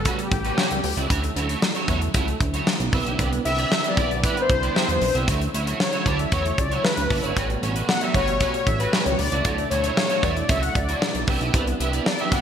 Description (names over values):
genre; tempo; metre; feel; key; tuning
early-eighties boogie funk; 115 BPM; 4/4; straight; D major; A4 = 436 Hz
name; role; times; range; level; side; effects
mellow synth brass; accompaniment; 0.0-12.4 s; F#4 to F#5; -25 LUFS; left 3 dB; chorus
brassy analog pad; sustained chords; 0.0-12.4 s; B2 to F#5; -32 LUFS; equal; chorus
chorused synth bass; bass; 0.0-12.4 s; F#1 to E2; -26 LUFS; right 1 dB; none
electric guitar at the edge of break-up; riff; 0.1-12.4 s; G3 to E5; -28 LUFS; right 4 dB; ensemble chorus
modern studio drum kit; drums; 0.1-12.4 s; hi-hat, kick drum, snare drum; -24 LUFS; equal; gated reverb
room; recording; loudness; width
moderate lush hall reverb, RT60 1.7 s, small room ambience; bright 1980s-style digital production; -20 LUFS; side -8 dB against mid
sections
0.0-12.4 A section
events
analog polysynth solo 0.0-12.4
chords
0.0 A13; 0.8 Dmaj9; 2.9 Cmaj9; 5.3 Dmaj9; 7.4 A13; 9.2 Dmaj9; 11.3 Cmaj9